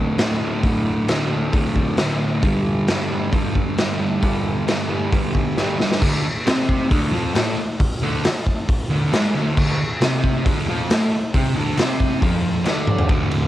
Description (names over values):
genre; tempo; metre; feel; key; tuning
garage rock duo or trio; 135 BPM; 4/4; straight; unclear; A4 = 441 Hz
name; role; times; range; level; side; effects
fuzz guitar; riff; 0.0-13.5 s; D2 to D4; -20 LUFS; equal; distortion, cassette tape
raw garage drum kit; drums; 0.2-13.4 s; crash cymbal, hi-hat, kick drum, ride cymbal, snare drum, toms; -20 LUFS; equal; cassette tape
group handclap; percussion; 0.2-12.8 s; none; -33 LUFS; left 3 dB; none
room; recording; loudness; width
light reverb; home recording on cassette; -17 LUFS; side -14 dB against mid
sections
0.0-6.0 A section; 6.0-13.1 B section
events
drum fill 5.6-6.0, 12.7-13.1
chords
0.0 D5; 2.4 G5; 6.0 D5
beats
0.19 | 0.64 1.09 1.54 1.99 | 2.44 2.89 3.34 3.79 | 4.24 4.68 5.13 5.58 | 6.02 6.47 6.91 7.36 | 7.80 8.24 8.69 9.13 | 9.57 10.02 10.46 10.90 | 11.34 11.79 12.23 12.67 | 13.11